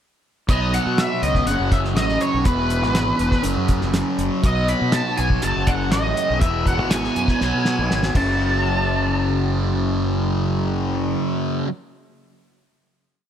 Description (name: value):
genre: psychedelic rock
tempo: 121 BPM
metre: 4/4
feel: straight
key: F# dorian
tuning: A4 = 440 Hz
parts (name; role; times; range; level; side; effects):
- octave-fuzz lead guitar; melody; 0.5-11.2 s; B4 to B5; -24 LUFS; equal; wah, distortion, tape echo
- fuzz guitar; riff; 0.5-11.7 s; E2 to B3; -22 LUFS; equal; distortion, phaser
- fuzz fingered electric bass; bass; 0.5-11.2 s; E1 to B2; -23 LUFS; equal; overdrive
- cloth-damped thuddy drum kit; drums; 0.5-8.3 s; crash cymbal, hi-hat, kick drum, snare drum; -22 LUFS; equal; none
room: small room ambience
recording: none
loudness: -18 LUFS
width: side -9 dB against mid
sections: 0.5-8.4 pre-chorus; 8.4-12.4 final hit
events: drum fill 7.4-8.4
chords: 0.5 B5; 1.5 F#m; 2.5 E; 3.5 F#5; 4.4 B5; 5.4 F#m; 6.4 E; 7.4 B5; 8.2 F#m